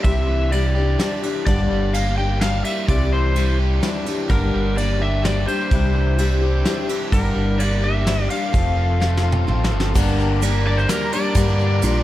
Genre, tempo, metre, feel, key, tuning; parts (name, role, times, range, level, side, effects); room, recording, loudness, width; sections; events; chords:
folk rock and heartland rock; 127 BPM; 3/4; straight; G dorian; A4 = 440 Hz
overdriven slide guitar; melody; 0.0-12.0 s; Bb4 to G5; -26 LUFS; left 2 dB; analog delay
picked steel-string acoustic guitar; accompaniment; 0.0-12.0 s; G2 to Bb4; -25 LUFS; left 5 dB
overdriven electric guitar; riff; 0.0-12.0 s; F2 to Bb4; -27 LUFS; right 1 dB
fingered electric bass; bass; 0.0-12.0 s; F1 to G2; -20 LUFS; right 1 dB
soft brush drum kit; drums; 0.0-11.9 s; crash cymbal, kick drum, ride cymbal, snare drum, toms; -24 LUFS; right 1 dB
bright tonewheel organ; sustained chords; 4.3-12.0 s; A3 to G4; -32 LUFS; right 1 dB
egg shaker; percussion; 10.0-11.9 s; -36 LUFS; right 9 dB
pedal steel guitar; second line; 11.8-12.0 s; F4; -26 LUFS; right 3 dB
little or no reverb; -17 LUFS; side -14 dB against mid
0.0-9.9 A section; 9.9-12.0 B section
drum fill 9.0-9.9
0.0 Cadd9; 1.5 Gm; 2.9 Cadd9; 4.3 Gm; 5.7 Cadd9; 7.1 Gm; 8.5 F; 9.9 Gm